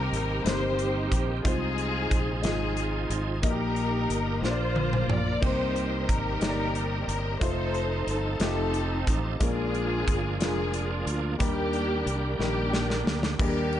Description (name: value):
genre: slow gospel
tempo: 60 BPM (dotted quarters)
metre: 6/8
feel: straight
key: Eb major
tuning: A4 = 441 Hz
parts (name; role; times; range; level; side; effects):
- muted studio string section; melody; 0.0-13.8 s; Bb3 to D5; -30 LUFS; left 1 dB; none
- warm upright piano; accompaniment; 0.0-13.8 s; Bb2 to Eb5; -32 LUFS; left 3 dB; none
- bright tonewheel organ; sustained chords; 0.0-13.4 s; Eb3 to Bb4; -36 LUFS; right 5 dB; fast rotary speaker, overdrive, chorus vibrato
- fingered electric bass; bass; 0.0-13.8 s; F1 to Eb2; -31 LUFS; equal; none
- modern studio drum kit; drums; 0.1-13.8 s; crash cymbal, hi-hat, kick drum, ride cymbal, snare drum, toms; -29 LUFS; equal; none
room: small room ambience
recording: nothing above 10.3 kHz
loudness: -25 LUFS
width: side -11 dB against mid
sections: 0.0-13.4 A section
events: drum fill 4.4-5.4, 12.4-13.4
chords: 0.0 Cm7; 1.5 Fm7; 3.4 Eb/Bb; 4.4 Bb; 5.4 Cm7; 7.4 F7; 9.4 Bb7; 11.4 Ebmaj7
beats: 0.46 | 1.45 2.45 | 3.44 4.44 | 5.43 6.42 | 7.42 8.41 | 9.41 10.40 | 11.40 12.40 | 13.39